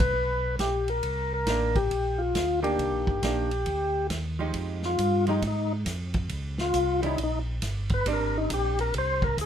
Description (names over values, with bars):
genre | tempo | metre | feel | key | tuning
soul jazz organ trio | 137 BPM | 4/4 | swing 65% on 8ths | C dorian, F dorian from 4.5 s | A4 = 444 Hz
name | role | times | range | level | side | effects
percussive tonewheel organ | melody | 0.0-9.5 s | Eb4 to C5 | -27 LUFS | left 2 dB | slow rotary speaker
mellow tonewheel organ | bass | 0.0-9.5 s | G1 to Ab2 | -30 LUFS | right 1 dB | chorus vibrato, stopped rotary speaker
vintage drum kit | drums | 0.0-9.5 s | hi-hat, kick drum, ride cymbal, snare drum | -32 LUFS | right 1 dB | none
archtop guitar, miked and amplified | accompaniment | 1.5-9.3 s | Eb3 to G4 | -32 LUFS | right 5 dB | none
room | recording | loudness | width
light reverb | minimal, uncompressed stereo recording | -25 LUFS | side -9 dB against mid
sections
0.0-4.5 A section; 4.5-9.5 B section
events
band accent 0.0; tonewheel organ solo 4.5-9.5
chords
0.2 G; 1.0 Cm9; 4.5 Fm9; 6.3 Eb13; 7.2 Gm; 8.1 Abmaj9#11